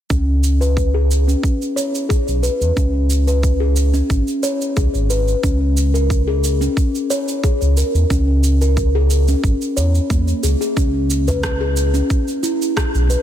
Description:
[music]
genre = organic downtempo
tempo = 90 BPM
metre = 4/4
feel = straight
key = C# minor pentatonic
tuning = A4 = 440 Hz
[part]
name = steel tongue drum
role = arpeggios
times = 0.1-13.2 s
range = A#3 to C#5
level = -20 LUFS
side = left 2 dB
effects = low-pass filter, ping-pong delay
[part]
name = smooth gliding synth bass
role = bass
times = 0.1-13.2 s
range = G#1 to E2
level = -16 LUFS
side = equal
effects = sidechain pumping
[part]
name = electronic cabasa and rim click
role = drums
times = 0.1-13.2 s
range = none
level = -27 LUFS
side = right 4 dB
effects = soft clipping on snare
[part]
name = electronic kick drum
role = drums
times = 0.1-12.9 s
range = none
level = -18 LUFS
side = equal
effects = none
[part]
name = udu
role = percussion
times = 11.3-11.4 s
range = none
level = -26 LUFS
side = equal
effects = none
[sound]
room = light reverb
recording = dense, heavily limited modern master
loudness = -15 LUFS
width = side -11 dB against mid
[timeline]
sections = 0.1-13.2 A section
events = none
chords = 0.1 C#7(no3); 5.4 G#sus24; 10.8 G#madd11 (rootless)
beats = | 0.10 0.77 1.44 2.10 | 2.77 3.44 4.10 4.77 | 5.44 6.10 6.77 7.44 | 8.10 8.77 9.44 10.10 | 10.77 11.44 12.10 12.77

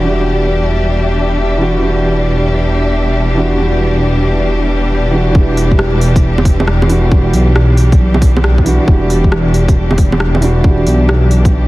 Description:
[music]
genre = future garage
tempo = 136 BPM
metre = 4/4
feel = swing 66% on 16ths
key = E minor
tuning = A4 = 439 Hz
[part]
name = felt-muted upright piano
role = accompaniment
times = 0.0-11.7 s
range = E3 to G4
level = -17 LUFS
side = right 2 dB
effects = vintage 12-bit sampler grit, sidechain pumping, analog delay
[part]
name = clear studio string section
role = sustained chords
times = 0.0-11.7 s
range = B2 to G4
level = -18 LUFS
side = left 1 dB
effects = sidechain pumping
[part]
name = dark detuned saw bass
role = bass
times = 0.0-11.7 s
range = E1 to B1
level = -13 LUFS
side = equal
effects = sidechain pumping
[part]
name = backwards swelling texture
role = texture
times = 0.0-5.4 s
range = E5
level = -27 LUFS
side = left 1 dB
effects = built-in reverb
[part]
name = electronic kick drum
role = drums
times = 5.3-11.5 s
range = none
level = -10 LUFS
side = equal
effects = none
[part]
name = garage drum kit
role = drums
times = 5.6-11.5 s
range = bongos, hi-hat, rim click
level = -18 LUFS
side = right 1 dB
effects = low-pass filter on perc, soft clipping on snare, low-pass filter on snare, low-pass filter on hats, low-pass filter on room
[sound]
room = light reverb, digital ambience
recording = dense, heavily limited modern master, vinyl crackle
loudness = -9 LUFS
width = side -18 dB against mid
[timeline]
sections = 0.0-5.4 A section; 5.4-11.7 B section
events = none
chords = 0.0 Em7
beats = | 0.06 0.50 0.94 1.38 | 1.82 2.26 2.70 3.15 | 3.59 4.03 4.47 4.91 | 5.35 5.79 6.23 6.67 | 7.12 7.56 8.00 8.44 | 8.88 9.32 9.76 10.20 | 10.64 11.09 11.53

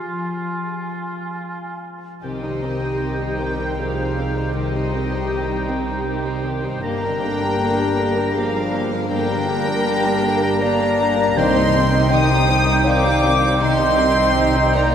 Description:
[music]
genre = cinematic, emotional film score for orchestra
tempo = 79 BPM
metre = 3/4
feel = rubato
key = C minor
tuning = A4 = 440 Hz
[part]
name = mellow hollow concert flute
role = second line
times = 0.0-14.9 s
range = G4 to Ab5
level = -24 LUFS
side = equal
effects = none
[part]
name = warm clarinet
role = second line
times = 0.0-14.9 s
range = D4 to F4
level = -29 LUFS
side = equal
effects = none
[part]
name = warm oboe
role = second line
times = 0.0-14.9 s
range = F4 to Bb5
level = -27 LUFS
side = right 1 dB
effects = none
[part]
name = concert harp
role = arpeggios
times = 0.0-14.9 s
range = G2 to C6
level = -28 LUFS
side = left 6 dB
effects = none
[part]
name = warm symphonic violin section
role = melody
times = 2.2-14.9 s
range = Eb5 to Eb6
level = -25 LUFS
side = left 3 dB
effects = none
[part]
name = warm symphonic violin section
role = second line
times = 2.2-14.9 s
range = Bb3 to C5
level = -28 LUFS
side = left 2 dB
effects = none
[part]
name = dark symphonic viola section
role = accompaniment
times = 2.2-14.9 s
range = D3 to Eb4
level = -27 LUFS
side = right 1 dB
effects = none
[part]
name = mellow French horn section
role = sustained chords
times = 2.2-14.9 s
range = Eb3 to D5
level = -26 LUFS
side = left 1 dB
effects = none
[part]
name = rich symphonic cello section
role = bass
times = 2.2-14.9 s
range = G2 to C3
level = -27 LUFS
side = right 2 dB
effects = none
[part]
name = rich symphonic double bass section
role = bass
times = 2.2-14.9 s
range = G1 to C2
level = -27 LUFS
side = right 2 dB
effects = none
[part]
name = timpani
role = percussion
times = 11.4-12.5 s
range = C3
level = -29 LUFS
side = equal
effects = none
[sound]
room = wet cathedral reverb, RT60 4.6 s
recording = none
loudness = -17 LUFS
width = side -8 dB against mid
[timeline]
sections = 0.0-2.2 A section; 2.2-14.9 A section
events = none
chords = 0.0 Fm; 2.2 Cm; 6.8 Gm; 11.4 Cm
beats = 0.66 1.45 | 2.24 3.02 3.79 | 4.56 5.32 6.07 | 6.83 7.59 8.36 | 9.11 9.86 10.62 | 11.37 12.12 12.87 | 13.62 14.37

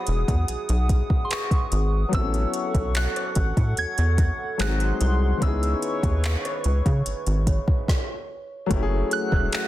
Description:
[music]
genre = contemporary R&B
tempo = 73 BPM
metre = 4/4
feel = straight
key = unclear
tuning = A4 = 441 Hz
[part]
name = soft synth bell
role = melody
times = 0.0-9.7 s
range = C6 to G#6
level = -30 LUFS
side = equal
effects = chorus, tremolo, digital delay
[part]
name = clear grand piano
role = accompaniment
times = 0.0-9.7 s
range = D#3 to A4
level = -30 LUFS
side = left 3 dB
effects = none
[part]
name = hollow soft pad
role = sustained chords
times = 0.0-9.7 s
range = A3 to E6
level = -32 LUFS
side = equal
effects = chorus
[part]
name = rubbery square bass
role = bass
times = 0.1-9.5 s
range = E1 to C#3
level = -22 LUFS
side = equal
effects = none
[part]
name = smooth R&B drum kit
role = drums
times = 0.1-9.7 s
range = handclaps, hi-hat, kick drum, rim click, snare drum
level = -24 LUFS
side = equal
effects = none
[part]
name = large celesta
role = texture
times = 1.3-2.5, 7.5-9.7 s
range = B4 to E5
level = -40 LUFS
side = right 1 dB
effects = digital delay
[sound]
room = digital ambience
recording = dense, heavily limited modern master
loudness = -21 LUFS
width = side -14 dB against mid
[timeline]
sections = 0.0-8.7 A section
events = stop 7.9-8.7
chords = 0.0 Emaj7; 2.1 A6; 4.6 G#7; 5.4 C#m7; 8.7 F#m7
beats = 0.49 1.31 | 2.13 2.95 3.77 4.60 | 5.42 6.24 7.06 7.88 | 8.71 9.53

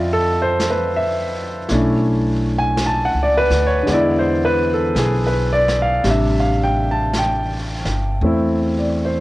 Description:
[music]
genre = jazz ballad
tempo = 55 BPM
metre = 4/4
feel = swing 66% on 8ths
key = unclear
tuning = A4 = 440 Hz
[part]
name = clear concert grand piano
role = accompaniment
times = 0.0-9.2 s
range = C3 to A5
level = -17 LUFS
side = equal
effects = none
[part]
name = upright bass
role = bass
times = 0.0-9.2 s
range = G1 to F2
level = -21 LUFS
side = equal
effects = none
[part]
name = vintage brush drum kit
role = drums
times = 0.6-9.2 s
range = brushed snare drum, hi-hat, snare drum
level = -29 LUFS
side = equal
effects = cassette tape
[sound]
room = light reverb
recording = home recording on cassette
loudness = -16 LUFS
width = side -18 dB against mid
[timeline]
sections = 0.0-9.2 A section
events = none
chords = 0.0 Dm9; 1.7 Bm11; 3.9 E7; 6.1 Am7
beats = 0.61 | 1.70 2.79 3.88 4.96 | 6.05 7.14 8.22

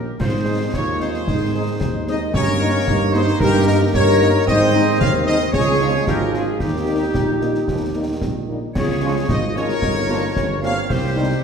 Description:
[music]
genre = military-style march for wind band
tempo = 112 BPM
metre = 2/4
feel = straight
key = Ab major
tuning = A4 = 440 Hz
[part]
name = clear trumpet section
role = melody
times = 0.0-11.4 s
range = G4 to F5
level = -25 LUFS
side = equal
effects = none
[part]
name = mellow hollow flute section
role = second line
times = 0.0-11.4 s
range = Eb4 to Db5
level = -25 LUFS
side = left 5 dB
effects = none
[part]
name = warm euphonium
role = second line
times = 0.0-11.4 s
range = C4 to Ab4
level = -26 LUFS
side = right 4 dB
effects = none
[part]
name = warm woodwind section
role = second line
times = 0.0-11.4 s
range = G4 to F5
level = -28 LUFS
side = left 2 dB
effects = none
[part]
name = dark French horn section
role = accompaniment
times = 0.0-11.3 s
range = G3 to F4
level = -28 LUFS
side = left 4 dB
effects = none
[part]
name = mellow tuba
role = bass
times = 0.0-11.3 s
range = G1 to Ab2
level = -21 LUFS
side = right 2 dB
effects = none
[part]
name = warm trombone section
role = sustained chords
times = 0.2-11.2 s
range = Eb3 to C4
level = -29 LUFS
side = right 2 dB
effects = none
[part]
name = concert snare drum, clash cymbals and concert bass drum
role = drums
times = 0.2-11.4 s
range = none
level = -24 LUFS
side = equal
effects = none
[sound]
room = wet scoring stage reverb, RT60 1.6 s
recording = heard from further back in the room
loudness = -16 LUFS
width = side -6 dB against mid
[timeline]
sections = 0.2-11.4 A section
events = none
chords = 0.2 Ab; 2.3 Eb7/G; 4.5 Ab; 5.5 Db; 6.6 Eb; 8.8 Db; 9.8 Gm7b5; 10.9 Cm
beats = | 0.20 0.73 | 1.27 1.80 | 2.34 2.87 | 3.41 3.94 | 4.48 5.01 | 5.55 6.08 | 6.62 7.15 | 7.68 8.22 | 8.76 9.29 | 9.82 10.36 | 10.89 11.43

